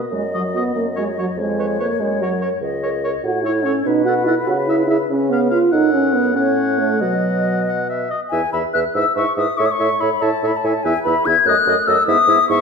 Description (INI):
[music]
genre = quick classical-period movement for wind quintet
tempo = 96 BPM (dotted quarters)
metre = 6/8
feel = straight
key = E major from 3.2 s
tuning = A4 = 438 Hz
[part]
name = concert flute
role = melody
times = 0.0-12.6 s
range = B4 to G#6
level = -20 LUFS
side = left 6 dB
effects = none
[part]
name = dark bassoon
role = bass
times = 0.0-12.6 s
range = C#2 to C#3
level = -23 LUFS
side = right 1 dB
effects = none
[part]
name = warm French horn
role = accompaniment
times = 0.1-12.6 s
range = F#3 to F#4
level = -20 LUFS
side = right 2 dB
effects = none
[part]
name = warm oboe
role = second line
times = 0.3-12.6 s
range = C#5 to F#5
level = -25 LUFS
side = left 2 dB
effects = none
[part]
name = warm clarinet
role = accompaniment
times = 0.3-12.6 s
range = E4 to D#5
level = -25 LUFS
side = right 7 dB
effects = none
[sound]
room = wet recital hall reverb, RT60 1.3 s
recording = none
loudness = -15 LUFS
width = side -5 dB against mid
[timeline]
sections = 0.0-8.3 A section; 8.3-12.6 B section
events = none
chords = 0.0 B; 0.8 F#5; 1.4 C#7/E#; 2.0 F#; 3.2 A6; 3.9 B5; 4.5 C#m; 5.1 C#7; 5.7 F#m; 6.4 F#m/A; 7.0 B; 8.3 E5; 8.9 E/G#; 9.6 A; 10.8 E5; 11.5 D#dim/F#; 12.1 E/G#